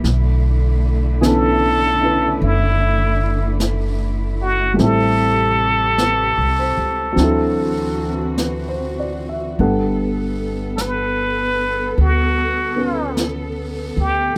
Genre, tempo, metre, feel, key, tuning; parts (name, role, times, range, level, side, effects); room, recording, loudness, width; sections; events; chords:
jazz ballad; 50 BPM; 4/4; swing 67% on 8ths; A4 = 441 Hz
dark grand piano; accompaniment; 0.0-14.4 s; E3 to F#5; -24 LUFS; equal
rich symphonic cello section; sustained chords; 0.0-14.4 s; C3 to A4; -29 LUFS; equal
upright bass; bass; 0.0-14.3 s; F#1 to D2; -23 LUFS; equal
jazz brush drum kit; drums; 0.0-14.4 s; brushed snare drum, hi-hat, snare drum; -30 LUFS; equal
trumpet with plunger mute; melody; 1.2-14.4 s; E4 to B4; -21 LUFS; equal
light reverb; -18 LUFS; mono
0.0-14.4 A section
0.1 Bm11; 4.8 Am7; 7.2 D9; 9.6 Gmaj9